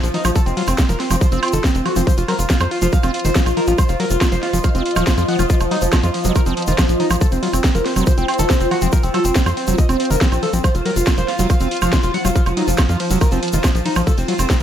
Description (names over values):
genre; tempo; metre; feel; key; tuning
psychedelic trance; 140 BPM; 4/4; straight; unclear; A4 = 440 Hz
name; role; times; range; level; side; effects
overdriven synth lead; melody; 0.0-14.6 s; F3 to Gb5; -23 LUFS; equal; phaser, vintage 12-bit sampler grit, sidechain pumping, tape echo
tight sequencer bass; bass; 0.0-14.6 s; Eb1 to F2; -20 LUFS; equal; none
drum and bass drum kit; drums; 0.0-14.6 s; hi-hat, ride cymbal, snare drum, woodblock; -24 LUFS; right 2 dB; none
tube shaker; percussion; 0.0-14.6 s; none; -30 LUFS; left 4 dB; none
granular cloud pad; texture; 0.1-14.6 s; F4 to C6; -23 LUFS; equal; built-in reverb, ensemble chorus, sidechain pumping
screaming distorted acid line; riff; 0.1-14.6 s; Eb3 to F4; -23 LUFS; moving between left 6 dB and right 4 dB; distortion, chorus, auto-pan, sidechain pumping, ping-pong delay
electronic kick drum; drums; 0.4-14.6 s; none; -16 LUFS; equal; none
room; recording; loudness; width
light reverb; none; -14 LUFS; side -10 dB against mid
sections
0.0-14.6 A section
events
none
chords
0.0 F5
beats
| 0.35 0.78 1.21 1.64 | 2.07 2.50 2.93 3.35 | 3.78 4.21 4.64 5.07 | 5.50 5.93 6.36 6.78 | 7.21 7.64 8.07 8.50 | 8.93 9.36 9.78 10.21 | 10.64 11.07 11.50 11.93 | 12.36 12.78 13.21 13.64 | 14.07 14.50